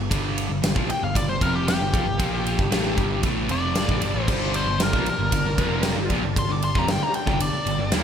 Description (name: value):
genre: hard rock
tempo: 115 BPM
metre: 4/4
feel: straight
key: G minor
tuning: A4 = 440 Hz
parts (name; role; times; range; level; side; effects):
- distorted electric guitar; riff; 0.0-8.0 s; F2 to Bb3; -30 LUFS; right 10 dB; distortion
- sludgy distorted guitar; riff; 0.0-8.0 s; F2 to Bb3; -29 LUFS; left 10 dB; overdrive
- overdriven picked electric bass; bass; 0.0-8.0 s; F1 to Eb2; -29 LUFS; equal; none
- big rock drum kit; drums; 0.1-8.0 s; crash cymbal, kick drum, ride cymbal, snare drum; -25 LUFS; right 1 dB; gated reverb
- nasal lead guitar with a parked wah; melody; 0.9-7.9 s; G4 to D6; -27 LUFS; left 3 dB; overdrive, ping-pong delay
- overdriven tonewheel organ; sustained chords; 4.3-8.0 s; G3 to A5; -36 LUFS; right 1 dB; slow rotary speaker, chorus vibrato
- sludgy distorted guitar; riff; 4.3-8.0 s; F2 to Bb3; -31 LUFS; right 1 dB; none
room: moderate plate reverb, RT60 1.9 s, small room ambience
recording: bright 1980s-style digital production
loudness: -20 LUFS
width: side -8 dB against mid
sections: 0.0-8.0 A section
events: lead electric guitar solo 0.0-8.0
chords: 0.0 Gm